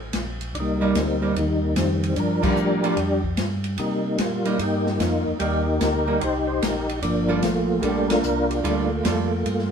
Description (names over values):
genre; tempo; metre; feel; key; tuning
soul jazz organ trio; 148 BPM; 4/4; swing 67% on 8ths; G minor; A4 = 440 Hz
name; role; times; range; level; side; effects
mellow tonewheel organ; bass; 0.0-9.7 s; G1 to C3; -28 LUFS; equal; overdrive, chorus vibrato, slow rotary speaker
open jazz drum kit; drums; 0.1-9.7 s; crash cymbal, hi-hat, kick drum, ride cymbal, snare drum; -29 LUFS; left 1 dB; none
percussive tonewheel organ; melody; 0.5-9.7 s; Eb3 to C5; -22 LUFS; equal; slow rotary speaker, chorus vibrato
archtop guitar, miked and amplified; accompaniment; 0.8-9.3 s; G3 to A4; -27 LUFS; right 5 dB; none
room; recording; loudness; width
moderate stone room reverb, RT60 1.0 s; band playing live in one room; -20 LUFS; side -7 dB against mid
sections
0.0-9.7 A section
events
band accent 2.4, 8.0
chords
0.0 Gmadd9 (rootless); 0.5 Cm7; 2.2 Gm9; 3.8 Cm7; 7.0 Gm9